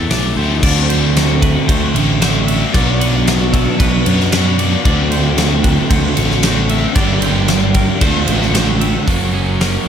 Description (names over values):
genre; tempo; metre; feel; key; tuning
rock, shoegaze and dream pop; 114 BPM; 4/4; straight; D mixolydian; A4 = 439 Hz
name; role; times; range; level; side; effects
twangy electric guitar; arpeggios; 0.0-9.9 s; F#4 to E5; -26 LUFS; right 4 dB; wide subtle chorus, tape echo
biting overdriven guitar; riff; 0.0-9.9 s; F#2 to A4; -20 LUFS; left 10 dB; lush chorus
biting overdriven guitar; riff; 0.0-9.1 s; G2 to D4; -21 LUFS; left 2 dB; harmonic tremolo
overdriven semi-hollow guitar; riff; 0.0-9.9 s; G2 to A4; -19 LUFS; right 8 dB; reverse reverb
modern bright picked electric bass; bass; 0.0-9.8 s; F#1 to F#2; -17 LUFS; equal; none
huge arena drum kit; drums; 0.1-9.7 s; crash cymbal, hi-hat, kick drum, ride cymbal, snare drum; -17 LUFS; equal; none
room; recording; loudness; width
light reverb, studio reverb; none; -12 LUFS; side -8 dB against mid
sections
0.6-9.1 A section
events
none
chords
0.0 Asus2; 0.6 D5; 2.7 Bm7; 4.9 D5; 7.0 Gm; 8.0 D7; 9.1 F#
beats
0.10 | 0.63 1.16 1.69 2.21 | 2.74 3.27 3.80 4.33 | 4.85 5.38 5.91 6.43 | 6.96 7.49 8.02 8.55 | 9.07 9.61